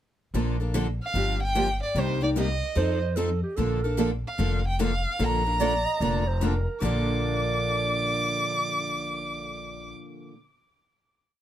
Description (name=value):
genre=acoustic string swing (jazz manouche)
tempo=148 BPM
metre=4/4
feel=swing 64% on 8ths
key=Bb major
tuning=A4 = 439 Hz
part: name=picked steel-string acoustic guitar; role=accompaniment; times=0.3-10.3 s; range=Bb2 to A4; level=-30 LUFS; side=left 4 dB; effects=none
part: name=picked steel-string acoustic guitar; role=accompaniment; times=0.3-10.4 s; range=Bb2 to A4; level=-34 LUFS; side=right 6 dB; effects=none
part: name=upright bass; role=bass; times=0.3-9.9 s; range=F1 to F2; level=-28 LUFS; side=equal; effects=none
part: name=warm violin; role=melody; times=1.0-9.9 s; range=C5 to D6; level=-29 LUFS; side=right 1 dB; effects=tape echo
part: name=growling clarinet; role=second line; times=2.8-9.9 s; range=G4 to Eb5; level=-31 LUFS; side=right 4 dB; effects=none
room=little or no reverb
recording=close, detailed microphones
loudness=-24 LUFS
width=side -11 dB against mid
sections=0.3-6.8 A section; 6.8-10.1 final chord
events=none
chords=0.3 Bbmaj7; 1.1 Gm7; 2.0 Cm7; 2.8 F7; 3.6 Bbmaj7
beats=| 0.34 0.74 1.15 1.55 | 1.95 2.36 2.76 3.17 | 3.58 3.98 4.39 4.79 | 5.20 5.60 6.01 6.42 | 6.82 7.23 7.63 8.04 | 8.44 8.85 9.25 9.65